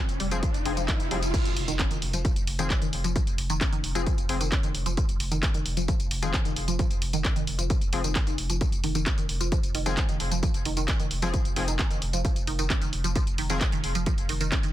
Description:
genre	driving peak-time techno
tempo	132 BPM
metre	4/4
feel	straight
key	F minor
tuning	A4 = 440 Hz
part	resonant blip pluck	riff	0.0-14.7 s	Eb3 to Db4	-33 LUFS	right 2 dB	chorus, phaser, tube saturation, sidechain pumping, dub echo
part	riser and impact	sound effects	0.0-3.2 s	none	-34 LUFS	equal	none
part	saturated sub bass	bass	0.1-14.7 s	F1	-31 LUFS	equal	overdrive, sidechain pumping, low-pass filter
part	punchy analog drum machine	drums	0.1-14.7 s	crash cymbal, handclaps, hi-hat, tambourine	-32 LUFS	equal	none
part	sync-sweep polysynth	stabs	0.3-13.6 s	F3 to Ab4	-34 LUFS	left 4 dB	chorus, vintage 12-bit sampler grit, sidechain pumping, tape echo
part	electronic kick drum	drums	0.4-14.6 s	none	-27 LUFS	equal	none
room	digital ambience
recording	dense, heavily limited modern master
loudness	-24 LUFS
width	side -13 dB against mid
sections	0.0-1.3 A section; 1.3-14.7 B section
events	riser 0.0-1.3; filter sweep on synth arpeggio sound 0.0-1.3; drop 1.3-14.7; impact 1.3-3.2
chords	0.0 Fm; 1.3 N.C.

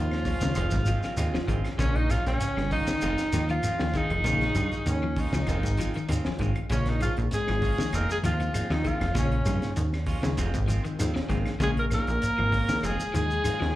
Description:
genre	afrobeat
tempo	98 BPM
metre	4/4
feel	swing 53% on 16ths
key	Bb minor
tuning	A4 = 440 Hz
part	clear tenor saxophone	melody	0.0-13.8 s	Db4 to Bb4	-30 LUFS	equal	slapback echo
part	breathy alto saxophone	second line	0.0-13.8 s	Db4 to Eb5	-38 LUFS	right 4 dB	slapback echo
part	muted trombone section	second line	0.0-13.7 s	Db3 to Bb3	-37 LUFS	left 2 dB	slapback echo
part	plucky analog bass	bass	0.0-13.7 s	F1 to G2	-27 LUFS	equal	none
part	crunchy breakbeat drum kit	drums	0.1-13.7 s	hi-hat, kick drum, snare drum	-33 LUFS	equal	none
part	claves	percussion	0.1-13.6 s	none	-44 LUFS	left 1 dB	none
part	semi-hollow electric guitar	stabs	0.2-13.6 s	Eb3 to F4	-38 LUFS	right 6 dB	slapback echo
part	shekere	percussion	0.3-13.6 s	none	-34 LUFS	equal	none
part	electric guitar at the edge of break-up	arpeggios	0.4-13.7 s	Db3 to F3	-35 LUFS	left 5 dB	ensemble chorus
part	reed electric piano	accompaniment	7.0-13.6 s	F3 to Ab4	-37 LUFS	left 2 dB	overdrive, fast tremolo
room	light reverb, studio reverb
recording	live gig heard through the venue's PA, club reverb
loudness	-24 LUFS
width	side -15 dB against mid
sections	0.0-13.8 A section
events	none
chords	0.0 Bbm7 (rootless); 0.6 Fm7; 1.8 Bbm7; 3.0 Fm7; 4.2 Bbm7; 5.5 Fm7; 6.7 Bbm7; 7.9 Fm7; 9.2 Bbm7; 10.4 Fm7; 11.6 Bbm7; 12.8 Fm7

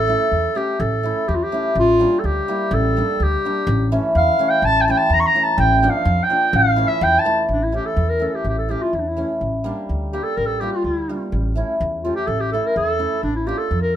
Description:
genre	klezmer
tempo	126 BPM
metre	2/4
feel	straight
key	A phrygian dominant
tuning	A4 = 440 Hz
part	clear clarinet	melody	0.0-14.0 s	D4 to C#6	-19 LUFS	right 1 dB	none
part	upright bass	bass	0.0-14.0 s	A1 to F2	-21 LUFS	equal	none
part	hammered dulcimer	accompaniment	0.1-13.6 s	E3 to G4	-23 LUFS	equal	none
part	pure breathy sine lead	second line	4.2-7.4 s	E5 to Bb5	-21 LUFS	left 2 dB	chorus
room	moderate studio reverb, RT60 0.6 s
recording	minimal, uncompressed stereo recording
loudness	-16 LUFS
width	side -10 dB against mid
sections	0.0-7.5 A section; 7.5-14.0 B section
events	clarinet solo 0.0-7.5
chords	0.0 A; 1.8 Gm/A; 3.7 A; 5.6 Bb/A; 6.5 A; 9.4 Gm/A; 11.3 A; 13.2 Bb/A

